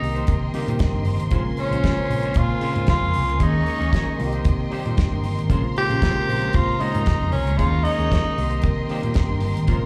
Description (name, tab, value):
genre	disco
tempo	115 BPM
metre	4/4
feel	straight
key	unclear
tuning	A4 = 439 Hz
part	growling tenor saxophone	melody	0.0-8.9 s	Db4 to G4	-27 LUFS	equal	slapback echo
part	semi-hollow electric guitar	accompaniment	0.0-9.9 s	Ab3 to Db5	-35 LUFS	equal	none
part	tine electric piano	accompaniment	0.0-9.9 s	Db3 to Eb5	-30 LUFS	equal	none
part	warm studio string section	sustained chords	0.0-9.9 s	Bb4 to Db6	-34 LUFS	equal	none
part	picked electric bass	bass	0.0-9.9 s	G1 to C3	-26 LUFS	equal	none
part	damped 70s drum kit	drums	0.0-9.8 s	hi-hat, kick drum, snare drum	-23 LUFS	equal	none
room	little or no reverb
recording	live gig heard through the venue's PA, club ambience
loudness	-21 LUFS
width	mono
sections	0.0-9.9 A section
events	tine electric piano fill 0.5-1.3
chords	0.0 Cm7; 1.3 Bbm9; 3.4 Eb7sus4; 4.2 Cm7; 5.5 Bbm9; 7.6 Eb7sus4; 8.4 Cm7